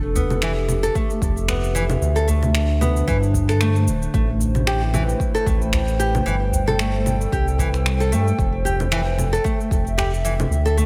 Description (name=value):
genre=organic downtempo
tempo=113 BPM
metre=4/4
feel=swing 55% on 16ths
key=unclear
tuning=A4 = 442 Hz
part: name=warbly tape-like pad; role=sustained chords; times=0.0-10.9 s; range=D3 to G5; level=-29 LUFS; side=equal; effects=chorus, built-in reverb, sidechain pumping
part: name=round analog bass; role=bass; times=0.0-10.9 s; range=D1 to G2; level=-23 LUFS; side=equal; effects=none
part: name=nylon-string guitar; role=arpeggios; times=0.2-10.9 s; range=E3 to A4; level=-27 LUFS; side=equal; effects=delay
part: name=electronic cabasa, congas and finger snaps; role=drums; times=0.2-10.9 s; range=none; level=-29 LUFS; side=equal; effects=overdrive
part: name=udu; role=percussion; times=0.2-10.9 s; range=none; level=-28 LUFS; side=equal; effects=none
part: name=electronic kick drum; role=drums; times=1.0-9.8 s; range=none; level=-26 LUFS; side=equal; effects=overdrive
room=light reverb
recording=none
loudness=-20 LUFS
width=mono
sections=0.0-10.9 A section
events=none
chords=0.0 Fmaj7; 2.0 Dsus2; 4.1 Am7; 6.3 Gsus24; 8.4 Fmaj7